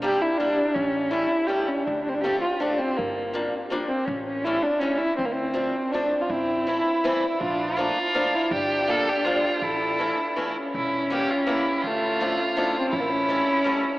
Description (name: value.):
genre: musette waltz.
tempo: 163 BPM.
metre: 3/4.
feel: straight.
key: unclear.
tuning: A4 = 443 Hz.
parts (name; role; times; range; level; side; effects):
dark violin; melody; 0.0-14.0 s; A3 to A4; -24 LUFS; equal; none.
picked swing-style acoustic guitar; accompaniment; 0.0-13.8 s; E3 to E4; -29 LUFS; left 1 dB; none.
upright bass; bass; 0.0-13.4 s; E1 to D2; -40 LUFS; equal; none.
rich violin; second line; 6.3-14.0 s; C4 to A4; -25 LUFS; right 1 dB; none.
room: wet cathedral reverb, RT60 5.9 s.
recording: in a vast, echoing space, AM radio sound.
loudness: -22 LUFS.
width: side -18 dB against mid.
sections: 0.0-14.0 A section.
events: none.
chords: 0.0 Em7b5; 0.7 A7; 1.9 Dm7; 3.0 Gm7; 4.1 A7; 5.2 Dm7; 6.3 Am; 7.4 Bbmaj7; 8.5 Gm7; 9.6 A; 10.7 Edim; 11.8 Dmadd9; 12.9 A7.